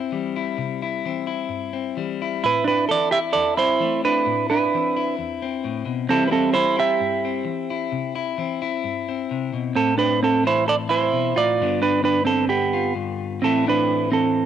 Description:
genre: highlife.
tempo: 131 BPM.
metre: 4/4.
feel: swing 55% on 16ths.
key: A minor.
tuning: A4 = 445 Hz.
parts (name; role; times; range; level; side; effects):
clean electric guitar; accompaniment; 0.0-14.5 s; E2 to F4; -25 LUFS; left 8 dB; cassette tape.
semi-hollow electric guitar; melody; 2.4-14.5 s; B3 to E5; -19 LUFS; right 4 dB; none.
room: light reverb.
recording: home recording on cassette, nothing above 10.8 kHz.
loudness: -19 LUFS.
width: side -9 dB against mid.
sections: 0.0-9.8 A section; 9.8-14.5 B section.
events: none.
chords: 0.0 C; 2.4 Amadd9; 6.1 C; 9.8 Amadd9; 11.6 G7; 13.4 Amadd9.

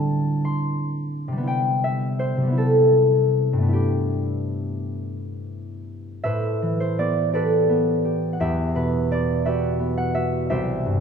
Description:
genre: classical, solo harp piece.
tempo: 42-61 BPM (dotted quarters).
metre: 6/8.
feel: rubato.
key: unclear.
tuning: A4 = 439 Hz.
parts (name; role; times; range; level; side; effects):
concert harp; solo; 0.0-11.0 s; C2 to C6; -20 LUFS; equal; none.
room: wet recital hall reverb, RT60 1.6 s.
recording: minimal, uncompressed stereo recording.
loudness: -20 LUFS.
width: side -6 dB against mid.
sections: 0.0-6.2 A section; 6.2-11.0 B section.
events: none.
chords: 0.0 D9sus4; 1.5 Cmaj7; 3.7 G69; 6.2 Am11; 8.4 Emadd9; 10.5 C.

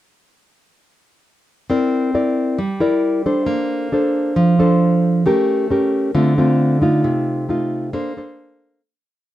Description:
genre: bossa nova.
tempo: 134 BPM.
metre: 4/4.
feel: straight.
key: Bb major.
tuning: A4 = 440 Hz.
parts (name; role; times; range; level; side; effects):
nylon-string guitar; solo; 1.7-8.8 s; C3 to D5; -15 LUFS; equal; none.
room: moderate studio reverb, RT60 0.6 s.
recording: dark, warm production.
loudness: -15 LUFS.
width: side -14 dB against mid.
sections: 1.7-8.8 A section.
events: fade-out 7.0-8.8.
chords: 1.7 C9; 3.5 Bbmaj9; 5.3 A7b9; 6.2 Dm7; 7.0 F7/C; 7.9 Bbmaj9.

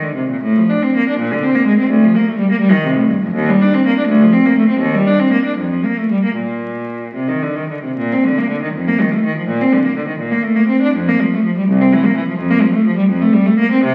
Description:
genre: classical, baroque-style suite movement for unaccompanied cello.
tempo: 69-86 BPM (dotted quarters).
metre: 6/8.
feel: rubato.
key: Bb major.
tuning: A4 = 440 Hz.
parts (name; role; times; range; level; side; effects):
clear cello; solo; 0.0-13.9 s; C2 to D4; -15 LUFS; equal; none.
room: wet recital hall reverb, RT60 1.3 s.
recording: very old 78 rpm record, vinyl crackle.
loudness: -15 LUFS.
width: mono.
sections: 0.0-8.0 A section; 8.0-13.9 B section.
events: none.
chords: none.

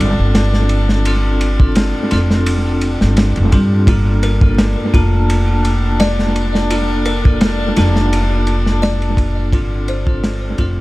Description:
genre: trip hop.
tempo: 85 BPM.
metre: 4/4.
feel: swing 53% on 16ths.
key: G minor.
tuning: A4 = 443 Hz.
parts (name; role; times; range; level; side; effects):
vibraphone with hard mallets; accompaniment; 0.0-10.8 s; Bb3 to A5; -20 LUFS; equal; tremolo, tape echo.
warm chamber string section; sustained chords; 0.0-10.8 s; D4; -25 LUFS; left 1 dB; none.
upright bass; bass; 0.0-10.8 s; F1 to G2; -16 LUFS; equal; tube saturation.
crunchy breakbeat drum kit; drums; 0.0-10.8 s; kick drum, ride cymbal, snare drum; -17 LUFS; equal; analog delay.
music box; arpeggios; 3.9-10.8 s; F4 to D5; -26 LUFS; left 3 dB; tape echo.
room: studio ambience.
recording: echo-heavy mix, vinyl crackle.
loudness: -12 LUFS.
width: side -19 dB against mid.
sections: 0.0-10.8 A section.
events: fade-out 7.6-10.8.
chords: 0.0 Dm7; 3.9 Gm7; 9.5 Dm7.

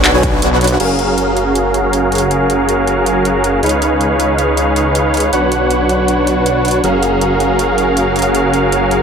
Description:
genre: future bass.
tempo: 159 BPM.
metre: 4/4.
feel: half-time.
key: F# major.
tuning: A4 = 440 Hz.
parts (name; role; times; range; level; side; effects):
dense compressed supersaw; riff; 0.0-9.0 s; C#4 to G#5; -12 LUFS; right 1 dB; sidechain pumping, low-pass filter, ping-pong delay.
wide detuned saw bass; bass; 0.0-9.0 s; F#1 to C#2; -18 LUFS; left 1 dB; chorus, sidechain pumping.
dubstep drum kit; drums; 0.0-9.0 s; crash cymbal, handclaps, hi-hat; -20 LUFS; right 1 dB; none.
room: light reverb.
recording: none.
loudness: -11 LUFS.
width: side -6 dB against mid.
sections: 0.8-9.0 A section.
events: none.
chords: 0.0 Bmadd9; 0.8 F#maj9; 3.6 C#9; 5.3 Bmadd9; 6.8 F#maj9.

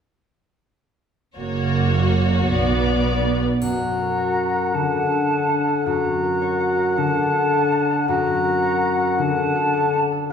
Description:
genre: cinematic, heroic adventure film score.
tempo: 108 BPM (dotted quarters).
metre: 6/8.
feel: straight.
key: unclear.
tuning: A4 = 435 Hz.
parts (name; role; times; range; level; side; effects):
rich studio violin section; melody; 1.4-3.4 s; C#5 to D5; -27 LUFS; left 4 dB; none.
rich symphonic violin section; second line; 1.4-3.4 s; F#4; -28 LUFS; left 2 dB; none.
rich symphonic viola section; accompaniment; 1.4-3.4 s; A#3 to B3; -25 LUFS; right 2 dB; none.
clear symphonic double bass section; bass; 1.4-3.4 s; F#1 to B1; -24 LUFS; right 4 dB; none.
warm studio cello section; bass; 1.4-3.4 s; F#2 to B2; -23 LUFS; right 3 dB; none.
concert flute; second line; 3.6-10.3 s; A5 to A#5; -24 LUFS; right 2 dB; none.
warm clarinet; second line; 3.6-10.3 s; D4 to F#4; -25 LUFS; equal; none.
warm oboe; second line; 3.6-10.0 s; F#5; -24 LUFS; left 2 dB; none.
concert harp; arpeggios; 3.6-10.3 s; F#2 to F#5; -23 LUFS; left 5 dB; none.
triangle; percussion; 3.6-4.3 s; none; -42 LUFS; left 2 dB; none.
room: wet recital hall reverb, RT60 1.5 s.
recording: recorded in a church or concert hall.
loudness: -18 LUFS.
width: side -7 dB against mid.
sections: 1.4-3.6 A section; 3.6-10.3 B section.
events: build-up 3.6-10.3.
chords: 1.4 F#; 2.5 Bm; 3.6 F#; 4.7 D; 5.9 F#; 7.0 D; 8.1 F#; 9.2 D.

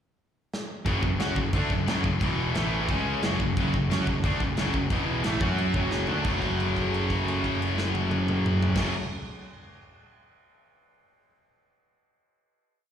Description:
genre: heavy metal.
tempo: 178 BPM.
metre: 4/4.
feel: straight.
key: F# minor.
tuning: A4 = 441 Hz.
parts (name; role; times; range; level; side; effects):
big rock drum kit; drums; 0.5-8.8 s; crash cymbal, kick drum, snare drum, toms; -30 LUFS; equal; none.
warm analog pad; sustained chords; 0.8-8.9 s; F#3 to C#6; -42 LUFS; equal; none.
crunchy overdriven guitar; riff; 0.8-8.9 s; E2 to F#4; -33 LUFS; equal; slapback echo.
scooped high-gain guitar; riff; 0.9-8.9 s; E2 to F#4; -30 LUFS; left 10 dB; distortion, slapback echo.
tight distorted guitar; riff; 0.9-8.9 s; E2 to F#4; -30 LUFS; right 8 dB; distortion.
fuzz picked electric bass; bass; 0.9-8.9 s; E1 to F#2; -30 LUFS; equal; overdrive.
room: light reverb.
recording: live gig heard through the venue's PA, recital hall reverb.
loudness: -24 LUFS.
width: side -9 dB against mid.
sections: 0.0-0.9 pickup bar; 0.9-6.3 riff; 6.3-9.0 final chord.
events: drum fill 0.5-0.9, 5.9-6.3; held note 6.3-8.8.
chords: 0.0 N.C.; 0.9 F#m; 2.2 E5; 2.5 A5; 2.9 C#5; 3.2 F#m; 4.9 E5; 5.2 F#m.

